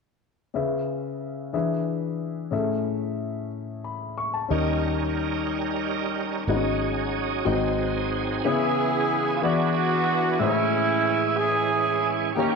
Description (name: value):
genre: gospel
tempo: 61 BPM (dotted quarters)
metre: 6/8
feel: straight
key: C# minor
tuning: A4 = 439 Hz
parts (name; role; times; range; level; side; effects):
- warm grand piano; accompaniment; 0.5-12.6 s; G#2 to C#6; -26 LUFS; left 5 dB; none
- bright tonewheel organ; sustained chords; 4.5-12.6 s; D#3 to A#4; -28 LUFS; right 9 dB; slow rotary speaker, overdrive, chorus vibrato
- fingered electric bass; bass; 4.5-8.4 s; G#1 to D#2; -30 LUFS; right 3 dB; none
- breathy alto saxophone; melody; 8.4-12.6 s; E4 to G#4; -27 LUFS; right 6 dB; none
- dark horn section; melody; 8.4-12.6 s; G#3 to G#4; -25 LUFS; right 1 dB; none
room: wet echo chamber reverb, RT60 1.5 s, small room ambience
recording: 1960s-style stereo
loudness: -22 LUFS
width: side -4 dB against mid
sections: 0.6-8.4 A section; 8.4-12.6 B section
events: none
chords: 0.6 C#m7; 1.5 E7; 2.5 Amaj7; 4.5 D#7; 6.5 G#7sus4; 7.5 G#7; 8.4 C#m7; 9.4 E7; 10.4 Amaj7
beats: | 0.55 1.54 | 2.53 3.51 | 4.50 5.49 | 6.47 7.46 | 8.44 9.42 | 10.40 11.38 | 12.36